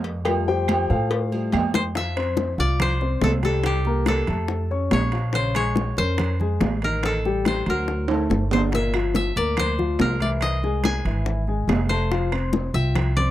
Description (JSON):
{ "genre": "Afro-Cuban jazz", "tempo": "142 BPM", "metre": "4/4", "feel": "straight", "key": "F major", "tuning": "A4 = 440 Hz", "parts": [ { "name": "upright bass", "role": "bass", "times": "0.0-13.3 s", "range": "F1 to A2", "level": "-24 LUFS", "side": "right 1 dB", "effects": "none" }, { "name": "cowbell and bongos", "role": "percussion", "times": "0.0-13.3 s", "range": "none", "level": "-28 LUFS", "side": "left 5 dB", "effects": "none" }, { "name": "agogo bells and timbales", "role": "percussion", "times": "0.2-13.2 s", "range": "none", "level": "-29 LUFS", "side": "right 6 dB", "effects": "none" }, { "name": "warm concert grand piano", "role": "accompaniment", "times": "0.3-13.3 s", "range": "Bb2 to F6", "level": "-27 LUFS", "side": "left 4 dB", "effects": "none" }, { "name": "claves", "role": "percussion", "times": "0.3-1.7, 8.9-13.2 s", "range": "none", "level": "-34 LUFS", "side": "right 16 dB", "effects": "none" }, { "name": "congas", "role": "percussion", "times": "0.3-13.3 s", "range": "none", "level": "-28 LUFS", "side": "left 1 dB", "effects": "none" }, { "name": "koto", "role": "melody", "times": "1.7-13.3 s", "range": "G4 to G#5", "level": "-27 LUFS", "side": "equal", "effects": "none" } ], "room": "light reverb", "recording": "dry, close 1970s-style studio recording", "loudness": "-20 LUFS", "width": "side -13 dB against mid", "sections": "0.0-2.0 A section; 2.0-13.3 B section", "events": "grand piano solo 0.0-2.0; drum fill 1.7, 8.1-8.7", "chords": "0.3 Fadd9; 2.0 Fsus2; 3.6 C5; 4.5 Faug; 5.3 Bbm9; 7.0 Am7b5; 7.9 D; 8.7 Gm7; 10.4 Caug; 12.1 Fsus2" }